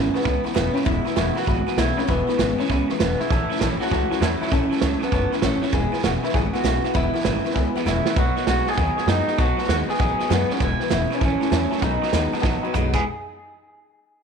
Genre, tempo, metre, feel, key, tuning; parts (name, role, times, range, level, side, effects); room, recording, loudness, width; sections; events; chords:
rockabilly; 197 BPM; 4/4; swing 65% on 8ths; E major; A4 = 440 Hz
electric guitar through a small old amp; melody; 0.0-13.0 s; B3 to G#4; -25 LUFS; equal; spring reverb, tape echo
honky-tonk upright piano; accompaniment; 0.0-13.0 s; B4 to C#6; -34 LUFS; left 13 dB
picked steel-string acoustic guitar; accompaniment; 0.0-13.0 s; E2 to G#4; -28 LUFS; left 16 dB
electric guitar through a small old amp; riff; 0.0-13.0 s; E2 to E4; -29 LUFS; right 13 dB
upright bass; bass; 0.0-13.0 s; E1 to F#2; -25 LUFS; left 1 dB
vintage drum kit; drums; 0.1-13.0 s; crash cymbal, hi-hat, kick drum, snare drum, toms; -25 LUFS; right 4 dB
studio reverb; 1960s-style stereo with parts hard left and right; -19 LUFS; side -6 dB against mid
0.0-13.0 A section; 13.0-14.2 B section
drum fill 7.9-8.2, 12.4-13.0
0.0 E; 3.3 A; 5.7 E; 8.2 B; 10.6 E; 11.2 A; 11.8 B; 12.9 E; 13.0 N.C.